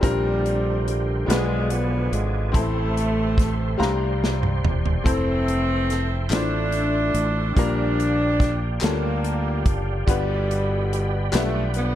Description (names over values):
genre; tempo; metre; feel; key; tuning
slow gospel; 48 BPM (dotted quarters); 6/8; straight; F major; A4 = 441 Hz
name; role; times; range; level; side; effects
mellow saxophone section; melody; 0.0-11.9 s; B2 to D4; -25 LUFS; equal; none
bright grand piano; accompaniment; 0.0-11.9 s; G2 to Bb5; -28 LUFS; left 4 dB; none
percussive tonewheel organ; sustained chords; 0.0-11.9 s; D4 to C6; -33 LUFS; right 3 dB; slow rotary speaker, overdrive, chorus vibrato
fingered electric bass; bass; 0.0-11.9 s; E1 to D2; -24 LUFS; equal; none
natural country drum kit; drums; 0.0-11.9 s; hi-hat, kick drum, snare drum, toms; -23 LUFS; equal; none
group handclap; percussion; 6.3-11.7 s; none; -31 LUFS; left 3 dB; none
room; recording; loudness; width
studio reverb; dark, warm production; -20 LUFS; side -12 dB against mid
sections
0.0-11.9 A section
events
drum fill 3.8-5.1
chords
0.0 Bb69; 1.3 Bdim7; 2.5 Am; 3.8 C9sus4; 5.1 Fmaj7; 7.6 Bb6; 10.1 G7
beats
| 0.03 1.29 | 2.54 3.80 | 5.06 6.32 | 7.57 8.83 | 10.08 11.33